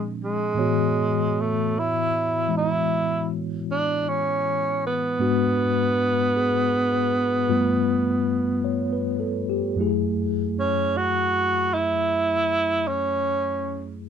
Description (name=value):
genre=jazz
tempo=52 BPM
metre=4/4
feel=swing 68% on 8ths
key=F# minor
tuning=A4 = 440 Hz
part: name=breathy tenor saxophone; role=melody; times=0.0-14.0 s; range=G#3 to F#4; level=-23 LUFS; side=right 2 dB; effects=none
part: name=mellow tine electric piano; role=accompaniment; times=0.0-14.1 s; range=F#2 to C#5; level=-25 LUFS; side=left 3 dB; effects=slow stereo tremolo
room=light reverb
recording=close, detailed microphones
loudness=-21 LUFS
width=side -8 dB against mid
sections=0.0-14.1 A section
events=none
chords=0.0 A#9; 0.6 A6; 5.2 G#m7b5; 7.5 G9; 9.8 F#m9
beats=| 0.57 1.73 2.88 4.04 | 5.19 6.34 7.49 8.62 | 9.76 10.90 12.04 13.18